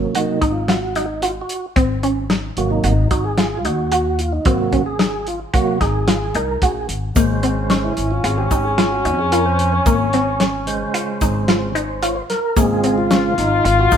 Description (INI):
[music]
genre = progressive instrumental, band music in an uneven meter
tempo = 111 BPM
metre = 5/4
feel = straight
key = Ab mixolydian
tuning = A4 = 438 Hz
[part]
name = percussive tonewheel organ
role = accompaniment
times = 0.0-14.0 s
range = C3 to Db5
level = -21 LUFS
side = right 3 dB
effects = chorus vibrato, fast rotary speaker
[part]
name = upright bass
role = bass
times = 0.0-14.0 s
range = Ab1 to F2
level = -22 LUFS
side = left 1 dB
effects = none
[part]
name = warm soul drum kit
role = drums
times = 0.1-14.0 s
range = hi-hat, kick drum, snare drum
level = -20 LUFS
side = left 1 dB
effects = none
[part]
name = resonant blip pluck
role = arpeggios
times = 0.2-14.0 s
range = Bb3 to Gb4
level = -22 LUFS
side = equal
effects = phaser
[part]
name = warm flugelhorn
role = second line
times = 7.2-14.0 s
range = Db4 to F4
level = -21 LUFS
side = left 2 dB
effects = none
[part]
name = tube shaker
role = percussion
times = 7.2-14.0 s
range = none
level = -34 LUFS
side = left 5 dB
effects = none
[sound]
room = moderate stone room reverb, RT60 1.3 s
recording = band playing live in one room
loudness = -16 LUFS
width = side -8 dB against mid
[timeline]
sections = 0.0-14.0 A section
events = tonewheel organ solo 0.0-14.0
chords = 0.0 Ab7; 7.2 Bbm7/Ab